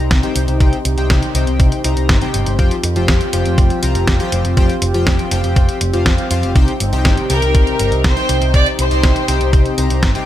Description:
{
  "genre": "italo disco",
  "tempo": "121 BPM",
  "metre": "4/4",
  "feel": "straight",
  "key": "C minor",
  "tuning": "A4 = 440 Hz",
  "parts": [
    { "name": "warm analog pad", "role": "sustained chords", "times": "0.0-10.3 s", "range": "C4 to G4", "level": "-23 LUFS", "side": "equal", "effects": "chorus" },
    { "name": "chorused polysynth", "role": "stabs", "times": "0.0-10.3 s", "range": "C3 to Bb5", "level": "-21 LUFS", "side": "left 4 dB", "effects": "ping-pong delay" },
    { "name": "picked electric bass with an envelope filter", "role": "bass", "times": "0.0-10.1 s", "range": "F1 to F2", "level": "-18 LUFS", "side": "equal", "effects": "none" },
    { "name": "detuned 8-bit digital drum machine", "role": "drums", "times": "0.1-10.2 s", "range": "hi-hat, snare drum", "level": "-21 LUFS", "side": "equal", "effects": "none" },
    { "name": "electronic kick drum", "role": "drums", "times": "0.1-10.1 s", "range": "none", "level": "-14 LUFS", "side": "equal", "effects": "none" },
    { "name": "rich chamber violin section", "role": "melody", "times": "7.3-9.7 s", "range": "Bb4 to D5", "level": "-19 LUFS", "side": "right 1 dB", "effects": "ping-pong delay" }
  ],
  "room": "digital ambience",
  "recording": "none",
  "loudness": "-12 LUFS",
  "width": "side -12 dB against mid",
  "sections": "0.0-10.3 A section",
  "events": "none",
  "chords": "0.0 Cm; 2.6 Fsus2; 6.6 Cm"
}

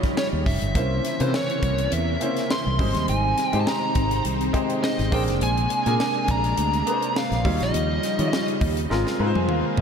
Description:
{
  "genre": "polished 1980s jazz-funk pop",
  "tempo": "103 BPM",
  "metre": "4/4",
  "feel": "swing 54% on 16ths",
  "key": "Ab major",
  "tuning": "A4 = 442 Hz",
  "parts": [
    { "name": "clear baby grand piano", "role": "accompaniment", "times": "0.0-9.8 s", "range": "G3 to Bb5", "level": "-27 LUFS", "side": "equal", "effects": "lush chorus" },
    { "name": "string machine, violins", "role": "sustained chords", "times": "0.0-9.8 s", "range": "C3 to F4", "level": "-28 LUFS", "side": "equal", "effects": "ensemble chorus" },
    { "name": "tight funk drum kit", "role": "drums", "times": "0.0-9.8 s", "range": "hi-hat, kick drum, snare drum, toms", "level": "-28 LUFS", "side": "equal", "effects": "none" },
    { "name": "fuzz lead guitar", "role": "melody", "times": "0.2-8.4 s", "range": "C5 to C6", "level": "-26 LUFS", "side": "equal", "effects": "distortion, diffuse ambient delay" },
    { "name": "fretless electric bass", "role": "bass", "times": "0.3-9.8 s", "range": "F1 to Eb3", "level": "-25 LUFS", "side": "equal", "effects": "wide subtle chorus" }
  ],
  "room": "moderate lush hall reverb, RT60 1.9 s, studio reverb",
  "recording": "dreamy mix soaked in reverb",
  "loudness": "-20 LUFS",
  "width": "side -6 dB against mid",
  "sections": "0.0-9.8 A section",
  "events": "drum fill 8.9-9.8; grand piano fill 8.9-9.8",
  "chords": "0.0 Eb9; 0.8 C7b9; 2.8 Abmaj7; 5.1 Bb9; 7.5 Eb9; 8.9 Ab69"
}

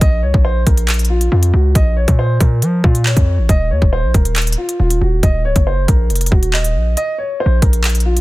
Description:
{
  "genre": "hip hop, drill",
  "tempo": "138 BPM",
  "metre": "4/4",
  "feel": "half-time",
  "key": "unclear",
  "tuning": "A4 = 443 Hz",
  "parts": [
    { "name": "dark grand piano", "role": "melody", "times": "0.0-8.2 s", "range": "F4 to Eb5", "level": "-21 LUFS", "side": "equal", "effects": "none" },
    { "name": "hard-hitting 808-style bass", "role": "bass", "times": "0.0-8.2 s", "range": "Db1 to F3", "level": "-14 LUFS", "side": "equal", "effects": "none" },
    { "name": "drill drum kit", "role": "drums", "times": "0.0-8.2 s", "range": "handclaps, hi-hat, kick drum", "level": "-14 LUFS", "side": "equal", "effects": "none" }
  ],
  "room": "little or no reverb",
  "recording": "dense, heavily limited modern master",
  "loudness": "-12 LUFS",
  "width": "side -18 dB against mid",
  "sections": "0.0-8.2 A section",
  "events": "break 7.0-7.4",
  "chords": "0.0 Bbm; 3.5 Eb5; 7.0 N.C."
}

